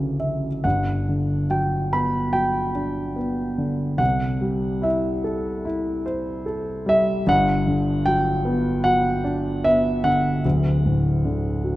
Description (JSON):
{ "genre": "classical, lyrical solo piano", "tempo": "74 BPM", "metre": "4/4", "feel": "rubato", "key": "G major", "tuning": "A4 = 435 Hz", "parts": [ { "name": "dark concert grand piano", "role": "solo", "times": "0.0-11.8 s", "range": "D1 to B5", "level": "-20 LUFS", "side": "equal", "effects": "none" } ], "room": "wet concert hall reverb, RT60 2.1 s", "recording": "none", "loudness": "-20 LUFS", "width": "side -16 dB against mid", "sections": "0.6-11.8 A section", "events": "none", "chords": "0.0 Dmaj7; 0.6 Gmaj7; 4.0 C6; 7.3 Gmaj7; 10.4 D" }